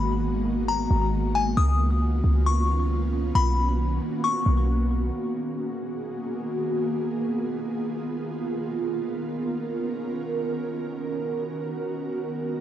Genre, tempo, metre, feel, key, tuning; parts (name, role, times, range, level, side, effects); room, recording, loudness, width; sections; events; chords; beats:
hip hop, atmospheric cloud-rap; free time; G# dorian; A4 = 440 Hz
delicate synth tine bell; melody; 0.0-4.7 s; G#5 to D#6; -28 LUFS; left 5 dB; chorus, low-pass filter, cassette tape, plate reverb, analog delay
ethereal airy pad; sustained chords; 0.0-12.6 s; D#3 to A#4; -27 LUFS; right 1 dB; ensemble chorus, built-in reverb, cassette tape
clean 808-style bass; bass; 0.0-5.1 s; G#1 to C#2; -23 LUFS; equal
light reverb; home recording on cassette; -24 LUFS; side -11 dB against mid
0.0-5.1 A section; 5.1-12.6 B section
0.0 G#m9; 1.6 C#13; 3.4 Bmaj9; 5.1 G#m9; 8.7 C#13; 10.5 Bmaj9
free time